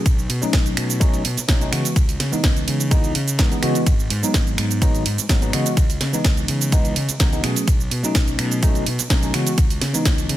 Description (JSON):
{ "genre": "filtered disco house", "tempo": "126 BPM", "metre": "4/4", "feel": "straight", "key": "C# minor", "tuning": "A4 = 439 Hz", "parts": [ { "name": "tine electric piano", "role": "accompaniment", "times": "0.0-10.4 s", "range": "E3 to G#4", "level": "-24 LUFS", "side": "equal", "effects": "phaser, vintage 12-bit sampler grit, sidechain pumping" }, { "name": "fuzz fingered electric bass", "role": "bass", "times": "0.1-10.4 s", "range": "G#1 to C#3", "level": "-24 LUFS", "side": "equal", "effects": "overdrive, sidechain pumping" }, { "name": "electronic kick drum", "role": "drums", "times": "0.1-10.2 s", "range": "none", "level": "-18 LUFS", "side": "equal", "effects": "none" }, { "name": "house drum kit", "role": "drums", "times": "0.1-10.4 s", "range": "finger snaps, hi-hat, ride cymbal, shaker, snare drum", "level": "-24 LUFS", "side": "right 3 dB", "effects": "sidechain pumping on hats, sidechain pumping on perc, sidechain pumping on cymbals" } ], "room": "little or no reverb", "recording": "none", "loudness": "-17 LUFS", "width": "side -14 dB against mid", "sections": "0.0-10.4 A section", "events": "none", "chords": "0.0 B9; 1.7 C#m7; 3.9 G#m7; 5.5 C#m7; 7.4 B9; 9.3 C#m7" }